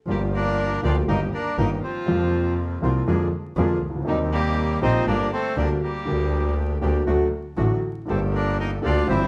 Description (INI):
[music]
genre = tango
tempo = 120 BPM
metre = 4/4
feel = rubato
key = G minor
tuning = A4 = 440 Hz
[part]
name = bandoneon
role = melody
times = 0.1-9.3 s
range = Eb3 to F4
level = -29 LUFS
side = equal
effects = none
[part]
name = warm violin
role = second line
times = 0.1-9.3 s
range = Eb4 to D5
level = -36 LUFS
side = equal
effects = none
[part]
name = warm upright piano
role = accompaniment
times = 0.1-9.3 s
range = G1 to G4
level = -27 LUFS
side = equal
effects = none
[part]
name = bandoneon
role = stabs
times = 0.1-9.3 s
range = A3 to A4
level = -37 LUFS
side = equal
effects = none
[part]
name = clear double bass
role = bass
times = 0.1-9.3 s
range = G1 to F2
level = -27 LUFS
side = equal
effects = none
[sound]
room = moderate large studio reverb, RT60 1.1 s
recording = vinyl crackle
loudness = -23 LUFS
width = mono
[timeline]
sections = 0.1-9.3 A section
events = none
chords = 0.1 Gm7; 1.1 Eb/G; 2.1 Fsus4; 3.1 Bb7/F; 4.1 Eb6; 5.1 Gm; 6.1 Gm/D; 7.1 D; 8.1 Gmadd9